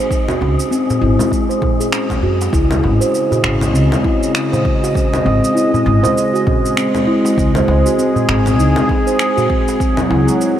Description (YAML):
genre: organic downtempo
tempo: 99 BPM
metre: 4/4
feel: swing 58% on 16ths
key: unclear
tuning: A4 = 440 Hz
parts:
  - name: steel tongue drum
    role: arpeggios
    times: 0.0-10.6 s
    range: G#3 to B#4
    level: -16 LUFS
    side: equal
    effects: analog delay
  - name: wind-like tuned noise texture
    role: texture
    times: 0.0-10.6 s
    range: G#3 to G#4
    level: -28 LUFS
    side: left 1 dB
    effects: built-in reverb, wide subtle chorus
  - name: electronic kick drum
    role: drums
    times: 0.1-9.9 s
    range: none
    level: -18 LUFS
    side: equal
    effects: overdrive
  - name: electronic shaker, congas and finger snaps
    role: drums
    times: 0.1-10.6 s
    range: none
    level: -22 LUFS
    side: equal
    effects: overdrive
  - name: upright bass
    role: bass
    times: 0.4-10.2 s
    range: G#1 to F#2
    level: -16 LUFS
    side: equal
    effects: sidechain pumping
  - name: darbuka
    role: percussion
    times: 0.4-10.4 s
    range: none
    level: -27 LUFS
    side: left 1 dB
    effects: none
  - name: warm analog pad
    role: sustained chords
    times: 2.5-10.6 s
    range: C#3 to D#5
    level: -19 LUFS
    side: right 1 dB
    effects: chorus, sidechain pumping
room: wet huge ambient reverb, RT60 8.7 s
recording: dreamy mix soaked in reverb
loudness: -12 LUFS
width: side -10 dB against mid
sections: 0.0-10.6 A section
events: none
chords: 0.1 F#sus2; 2.5 C#madd9; 7.4 G#; 9.8 F#sus2